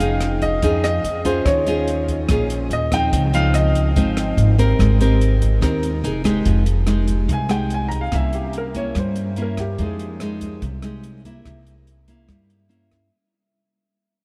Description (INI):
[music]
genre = bossa nova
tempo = 144 BPM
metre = 4/4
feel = straight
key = F minor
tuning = A4 = 442 Hz
[part]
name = warm baby grand piano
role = melody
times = 0.0-11.0 s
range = G4 to Bb5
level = -27 LUFS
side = equal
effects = subtle chorus, diffuse ambient delay
[part]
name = nylon-string guitar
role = accompaniment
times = 0.0-13.1 s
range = Ab2 to Bb4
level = -25 LUFS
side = equal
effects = none
[part]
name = upright bass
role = bass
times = 0.0-13.1 s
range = F1 to G2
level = -23 LUFS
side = equal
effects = none
[part]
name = compact cocktail drum kit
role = drums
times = 0.0-13.0 s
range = hi-hat, kick drum, rim click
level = -28 LUFS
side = equal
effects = none
[sound]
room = moderate huge ambient reverb, RT60 6.7 s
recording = dreamy mix soaked in reverb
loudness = -19 LUFS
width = mono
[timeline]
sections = 0.0-6.5 A section; 6.5-13.1 B section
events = fade-out 6.5-13.1; grand piano solo 6.5-13.1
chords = 0.0 Dbadd9/F; 1.5 Eb9sus4; 3.1 Dbmaj9; 4.8 Abmaj9; 6.0 Fm11; 6.5 Fm9; 8.1 C7b9; 9.8 Fm9; 11.5 C7b9